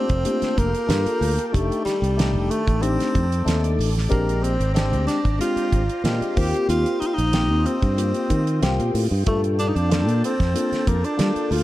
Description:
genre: electric jazz fusion.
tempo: 93 BPM.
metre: 4/4.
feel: straight.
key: G minor.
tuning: A4 = 440 Hz.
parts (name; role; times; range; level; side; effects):
warm tenor saxophone; melody; 0.0-11.6 s; G3 to G4; -24 LUFS; equal; none.
barky tine electric piano; accompaniment; 0.0-11.6 s; Bb2 to A4; -27 LUFS; left 4 dB; phaser.
ensemble organ-string; sustained chords; 0.0-11.6 s; Eb3 to Bb5; -33 LUFS; equal; ensemble chorus.
modern bright fingered electric bass; bass; 0.1-11.6 s; F1 to G3; -22 LUFS; equal; none.
damped 70s drum kit; drums; 0.1-11.6 s; hi-hat, kick drum, snare drum; -25 LUFS; right 1 dB; none.
room: light reverb, small room ambience.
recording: dark, warm production.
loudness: -19 LUFS.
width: side -15 dB against mid.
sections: 0.0-11.6 A section.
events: none.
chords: 0.0 Gm9; 1.5 F13; 4.1 Bb13; 6.4 Eb69; 9.3 Gm9.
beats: 0.26 0.90 | 1.54 2.19 2.83 3.47 | 4.12 4.76 5.40 6.04 | 6.69 7.33 7.98 8.62 | 9.26 9.91 10.55 11.19.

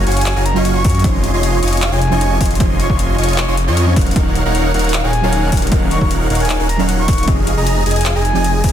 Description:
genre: future bass.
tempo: 154 BPM.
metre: 4/4.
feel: half-time.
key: Db major.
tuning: A4 = 441 Hz.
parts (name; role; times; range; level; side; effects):
soft round pluck; accompaniment; 0.0-8.7 s; F3 to Eb5; -23 LUFS; right 4 dB; wide subtle chorus, sidechain pumping, dub echo.
dense compressed supersaw; riff; 0.0-8.7 s; Eb4 to Db6; -19 LUFS; right 1 dB; sidechain pumping.
wide detuned saw bass; bass; 0.0-8.7 s; Eb1 to Gb2; -17 LUFS; equal; chorus, tube saturation, sidechain pumping.
trap drum kit; drums; 0.1-8.7 s; handclaps, hi-hat; -23 LUFS; left 3 dB; studio reverb.
breathy flute-like synth lead; melody; 0.2-8.7 s; F5 to Db6; -24 LUFS; equal; chorus, sidechain pumping, dub echo.
electronic kick drum; drums; 0.8-8.7 s; none; -16 LUFS; equal; overdrive, studio reverb.
room: digital ambience.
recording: dense, heavily limited modern master.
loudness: -12 LUFS.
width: side -10 dB against mid.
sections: 0.0-8.7 A section.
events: none.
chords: 0.0 Gbmaj7; 1.0 Dbmaj9/F; 4.0 Ebm7; 7.3 Fm7.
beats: 0.26 0.65 | 1.04 1.43 1.82 2.21 | 2.60 2.99 3.38 3.77 | 4.16 4.55 4.94 5.33 | 5.72 6.11 6.50 6.89 | 7.28 7.67 8.05 8.44.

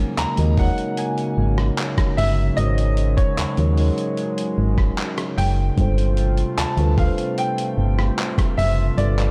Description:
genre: contemporary R&B.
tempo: 75 BPM.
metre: 4/4.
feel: straight.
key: unclear.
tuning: A4 = 439 Hz.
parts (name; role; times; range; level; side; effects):
clear baby grand piano; melody; 0.0-9.3 s; C#5 to A#5; -30 LUFS; equal; analog chorus, delay.
mellow tine electric piano; accompaniment; 0.0-9.3 s; G3 to D#5; -29 LUFS; equal; none.
chorused pulse-width pad; sustained chords; 0.0-9.3 s; C3 to F4; -30 LUFS; equal; none.
solid FM bass; bass; 0.0-9.3 s; F#1 to D#2; -21 LUFS; equal; none.
dusty soul sampler-style drum kit; drums; 0.2-9.3 s; handclaps, hi-hat, kick drum, rim click; -26 LUFS; equal; overdrive.
room: light reverb, digital ambience.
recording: none.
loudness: -20 LUFS.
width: mono.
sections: 0.0-9.3 A section.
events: none.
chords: 0.0 G#9sus4; 5.8 G9sus4.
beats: 0.18 0.98 1.78 | 2.58 3.38 4.18 4.98 | 5.78 6.58 7.38 8.18 | 8.98.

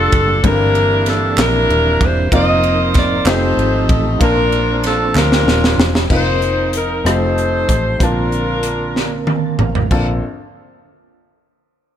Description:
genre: slow gospel.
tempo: 63 BPM (dotted quarters).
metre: 6/8.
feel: straight.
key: Bb major.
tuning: A4 = 441 Hz.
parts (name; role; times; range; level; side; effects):
bright saxophone section; melody; 0.0-9.3 s; D4 to Eb5; -17 LUFS; left 1 dB; slapback echo.
clear grand piano; accompaniment; 0.0-10.2 s; Bb1 to A5; -22 LUFS; left 2 dB; none.
percussive tonewheel organ; sustained chords; 0.0-10.2 s; D3 to A5; -23 LUFS; right 2 dB; slow rotary speaker, chorus vibrato.
vintage muted fingered electric bass; bass; 0.0-10.2 s; Eb1 to D2; -19 LUFS; equal; none.
crisp fusion drum kit; drums; 0.1-10.1 s; crash cymbal, hi-hat, kick drum, ride cymbal, rim click, snare drum, toms; -18 LUFS; equal; none.
group handclap; percussion; 1.4-5.4 s; none; -23 LUFS; right 5 dB; none.
room: small room ambience.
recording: none.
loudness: -12 LUFS.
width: side -10 dB against mid.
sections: 0.0-6.1 A section; 6.1-9.9 B section; 9.9-11.8 C section.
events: drum fill 5.2-6.1, 9.0-9.9; tonewheel organ fill 9.0-9.9.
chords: 0.4 C9/G; 2.3 F7sus4; 3.3 F9; 4.2 Bbmaj9; 6.1 F7sus4; 7.1 F9; 8.0 Bbmaj9.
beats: | 0.43 1.38 | 2.32 3.26 | 4.21 5.16 | 6.10 7.05 | 8.00 8.96 | 9.91.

